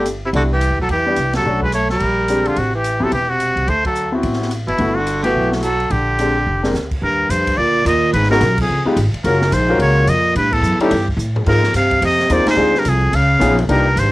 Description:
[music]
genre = jazz, small-group swing and bop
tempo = 216 BPM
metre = 4/4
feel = swing 61% on 8ths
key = Eb major from 7.0 s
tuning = A4 = 439 Hz
[part]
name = trumpet with straight mute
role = melody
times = 0.0-14.1 s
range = E4 to F5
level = -18 LUFS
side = equal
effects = cassette tape
[part]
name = breathy baritone saxophone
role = second line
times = 0.0-14.1 s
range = E2 to A3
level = -22 LUFS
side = right 2 dB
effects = cassette tape
[part]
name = warm concert grand piano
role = accompaniment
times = 0.0-13.8 s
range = G3 to C5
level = -19 LUFS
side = left 2 dB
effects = cassette tape
[part]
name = upright bass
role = bass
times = 0.0-14.1 s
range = E1 to A2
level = -19 LUFS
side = equal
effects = none
[part]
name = open jazz drum kit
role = drums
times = 0.1-14.0 s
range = crash cymbal, hi-hat, kick drum, ride cymbal, snare drum, toms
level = -27 LUFS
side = equal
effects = cassette tape
[sound]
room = light reverb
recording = home recording on cassette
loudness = -14 LUFS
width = side -18 dB against mid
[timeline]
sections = 0.0-7.0 A section; 7.0-14.1 B section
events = band accent 1.3, 3.8, 8.6, 10.5, 12.4; drum fill 6.5, 11.2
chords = 0.3 Cmaj9; 1.4 Bm9; 2.0 Bb13; 2.6 Am7; 3.7 D13; 4.8 Gmaj13; 5.9 Bb13; 7.0 Ebmaj9; 8.1 Abm7; 8.7 Db9; 9.2 Gbmaj9; 10.4 A7(no3); 11.5 Ab69; 12.6 Dm7b5; 13.1 Db9

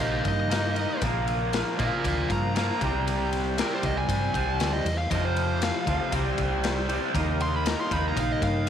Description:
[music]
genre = classic rock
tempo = 118 BPM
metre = 4/4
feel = straight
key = unclear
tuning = A4 = 440 Hz
[part]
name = fuzz lead guitar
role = melody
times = 0.0-8.7 s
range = Bb4 to C6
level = -32 LUFS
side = right 1 dB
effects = distortion, slapback echo
[part]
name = bright tonewheel organ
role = sustained chords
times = 0.0-8.7 s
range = F3 to C5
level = -38 LUFS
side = right 1 dB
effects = none
[part]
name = raw garage guitar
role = riff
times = 0.0-8.7 s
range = F2 to Eb4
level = -28 LUFS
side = equal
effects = overdrive
[part]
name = hollow-body short-scale fingered electric bass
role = bass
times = 0.0-8.7 s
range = Bb1 to Bb2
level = -29 LUFS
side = right 1 dB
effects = none
[part]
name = raw garage drum kit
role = drums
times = 0.2-8.7 s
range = kick drum, ride cymbal, snare drum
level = -30 LUFS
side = left 3 dB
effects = none
[sound]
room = light reverb, small room ambience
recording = 1960s-style stereo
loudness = -24 LUFS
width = side -9 dB against mid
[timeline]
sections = 0.0-8.7 A section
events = lead electric guitar solo 0.0-8.7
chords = 0.0 Eb; 1.0 Bb; 2.8 C; 5.1 F; 6.1 C; 7.2 Eb

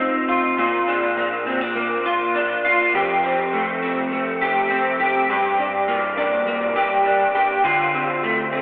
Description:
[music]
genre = dream pop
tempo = 102 BPM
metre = 4/4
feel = straight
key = Bb major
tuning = A4 = 441 Hz
[part]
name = electric guitar at the edge of break-up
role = solo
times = 0.0-8.6 s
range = F2 to G4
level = -17 LUFS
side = equal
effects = analog chorus, diffuse ambient delay
[sound]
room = wet plate reverb, RT60 2.8 s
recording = dreamy mix soaked in reverb, telephone sound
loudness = -17 LUFS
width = side -24 dB against mid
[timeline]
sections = 0.6-8.6 A section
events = none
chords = 0.0 F7/A; 0.6 Bb; 2.9 Fadd9; 5.3 Gm; 7.6 Dm7

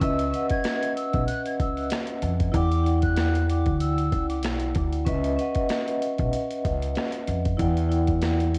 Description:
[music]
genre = hip hop, boom-bap hip-hop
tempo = 95 BPM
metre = 4/4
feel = swing 55% on 16ths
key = C# minor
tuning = A4 = 439 Hz
[part]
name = breathy mellow jazz flute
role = melody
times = 0.0-4.4 s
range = D6 to G#6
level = -35 LUFS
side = equal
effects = high-pass filter, low-pass filter, cassette tape, analog delay
[part]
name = vibraphone with medium hard mallets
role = accompaniment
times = 0.0-8.6 s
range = C#4 to G5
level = -29 LUFS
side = equal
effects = high-pass filter, low-pass filter, cassette tape
[part]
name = upright bass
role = bass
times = 0.0-8.6 s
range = B1 to E#2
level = -28 LUFS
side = equal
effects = none
[part]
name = boom bap sampler-style drum kit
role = drums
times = 0.0-8.6 s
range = hi-hat, kick drum, rim click, snare drum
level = -31 LUFS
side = equal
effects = cassette tape
[sound]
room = little or no reverb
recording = home recording on cassette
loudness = -25 LUFS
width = mono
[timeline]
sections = 0.0-8.6 A section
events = none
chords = 0.0 C#m9; 2.5 Em9; 5.1 C#m9; 7.6 Em9

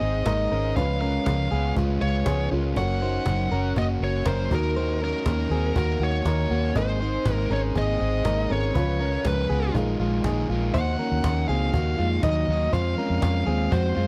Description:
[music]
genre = jangly indie pop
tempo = 120 BPM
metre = 4/4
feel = straight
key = Eb dorian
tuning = A4 = 440 Hz
[part]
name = bluesy overdriven lead guitar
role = melody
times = 0.0-14.1 s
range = Bb4 to Gb5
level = -32 LUFS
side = equal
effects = distortion
[part]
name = crunchy overdriven guitar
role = accompaniment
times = 0.0-14.1 s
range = Bb2 to C5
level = -33 LUFS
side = equal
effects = none
[part]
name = warm upright piano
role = accompaniment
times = 0.0-10.8 s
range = C4 to Cb5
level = -38 LUFS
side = equal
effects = none
[part]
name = direct-recorded clean electric guitar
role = arpeggios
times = 0.0-14.1 s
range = Gb3 to Eb5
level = -32 LUFS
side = equal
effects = none
[part]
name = vintage muted fingered electric bass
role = bass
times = 0.0-14.1 s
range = Gb1 to Gb2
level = -28 LUFS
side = equal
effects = none
[part]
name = cajon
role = drums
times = 0.3-13.8 s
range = none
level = -31 LUFS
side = equal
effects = none
[sound]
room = little or no reverb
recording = dry, close 1970s-style studio recording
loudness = -24 LUFS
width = mono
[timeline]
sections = 0.0-10.7 A section; 10.7-14.1 B section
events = none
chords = 0.0 Abadd9; 0.8 Db7; 2.8 Gb; 4.5 Ebm; 6.8 Abadd9; 8.8 Db7; 9.7 Bb7sus4; 10.7 Ebm; 12.7 Fm

